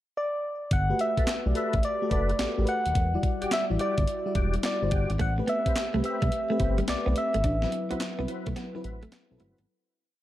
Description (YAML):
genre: R&B, new jack swing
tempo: 107 BPM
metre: 4/4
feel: swing 66% on 16ths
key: G major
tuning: A4 = 440 Hz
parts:
  - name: soft struck synth lead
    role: melody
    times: 0.2-8.8 s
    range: D5 to F#5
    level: -30 LUFS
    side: equal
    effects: chorus
  - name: smooth synth bass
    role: bass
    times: 0.7-9.7 s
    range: Eb1 to C2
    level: -28 LUFS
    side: equal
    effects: none
  - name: crisp 8-bit digital drum machine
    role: drums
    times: 0.7-9.7 s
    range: handclaps, hi-hat, kick drum, snare drum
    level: -29 LUFS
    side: equal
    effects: none
  - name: FM electric piano with soft pad layer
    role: accompaniment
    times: 0.9-9.7 s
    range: F#3 to D5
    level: -32 LUFS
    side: left 2 dB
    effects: chorus
  - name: tonewheel organ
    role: stabs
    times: 1.2-9.6 s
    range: C4 to D5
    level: -36 LUFS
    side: left 1 dB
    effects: chorus vibrato, slow rotary speaker
  - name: direct-recorded clean electric guitar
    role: riff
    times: 5.2-9.6 s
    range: G3 to D4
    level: -34 LUFS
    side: right 3 dB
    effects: lush chorus
room: light reverb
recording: dark, warm production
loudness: -24 LUFS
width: side -14 dB against mid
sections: 0.0-0.7 pickup bar; 0.7-9.7 verse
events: fade-out 7.4-9.7; break 8.6-9.7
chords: 0.0 N.C.; 0.7 Gmaj9; 3.0 Em9; 5.2 Am9; 7.4 D13/A (rootless)